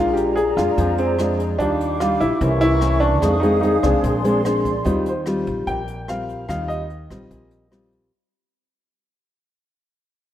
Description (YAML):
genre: bossa nova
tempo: 147 BPM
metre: 4/4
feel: straight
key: Eb major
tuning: A4 = 439 Hz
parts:
  - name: warm baby grand piano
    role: melody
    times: 0.0-7.9 s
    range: C4 to G5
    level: -22 LUFS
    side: right 1 dB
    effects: none
  - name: nylon-string guitar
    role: accompaniment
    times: 0.0-8.1 s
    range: F2 to F4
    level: -22 LUFS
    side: left 1 dB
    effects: none
  - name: breathy large flute ensemble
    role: sustained chords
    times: 0.0-4.8 s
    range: G4 to Eb6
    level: -25 LUFS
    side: left 1 dB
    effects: none
  - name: upright bass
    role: bass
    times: 0.0-8.1 s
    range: Bb1 to F2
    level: -24 LUFS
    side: equal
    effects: none
  - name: jazz brush drum kit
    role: drums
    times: 0.2-8.0 s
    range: hi-hat, kick drum, rim click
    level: -34 LUFS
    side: equal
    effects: none
room: moderate lush hall reverb, RT60 2.2 s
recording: rough home demo mix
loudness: -17 LUFS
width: side -12 dB against mid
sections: 0.0-4.9 A section; 4.9-8.1 B section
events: fade-out 4.9-8.1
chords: 0.0 Bb7; 1.6 Ebmaj9; 2.4 C7b9; 3.2 Fm7; 4.0 Bb9; 4.9 Eb69